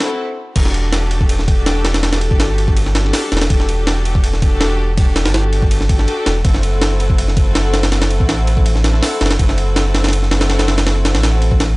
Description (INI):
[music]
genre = drum and bass, jungle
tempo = 163 BPM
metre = 4/4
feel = straight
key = E minor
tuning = A4 = 440 Hz
[part]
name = warm chamber string section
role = sustained chords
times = 0.0-11.8 s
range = C4 to A4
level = -22 LUFS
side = left 1 dB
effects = none
[part]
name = breakbeat sampler-style drum kit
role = drums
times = 0.0-11.7 s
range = crash cymbal, hi-hat, kick drum, ride cymbal, snare drum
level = -16 LUFS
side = equal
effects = small room ambience
[part]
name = soft dub sub bass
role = bass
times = 0.6-11.8 s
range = E1 to A1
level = -16 LUFS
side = equal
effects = tube saturation
[sound]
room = small room reverb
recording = dry, gritty hardware recording, nothing above 10.8 kHz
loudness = -13 LUFS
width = side -23 dB against mid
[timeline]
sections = 0.6-11.8 A section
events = stop 0.2-0.6; drop 0.6-11.8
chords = 0.0 F#m7b5; 0.6 Em11; 6.4 F#m7b5